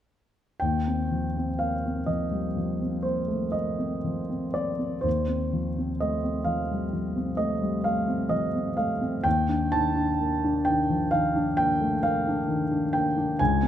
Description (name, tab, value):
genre	classical, impressionist solo piano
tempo	39-44 BPM (dotted quarters)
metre	9/8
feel	rubato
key	Eb lydian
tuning	A4 = 439 Hz
part	warm concert grand piano	solo	0.6-13.7 s	Db2 to A5	-24 LUFS	equal	none
room	moderate recital hall reverb, RT60 1.6 s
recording	close, detailed microphones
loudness	-24 LUFS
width	side -10 dB against mid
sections	0.6-13.7 A section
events	none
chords	0.6 Eb69; 5.1 Fadd9/Eb; 9.3 Eb5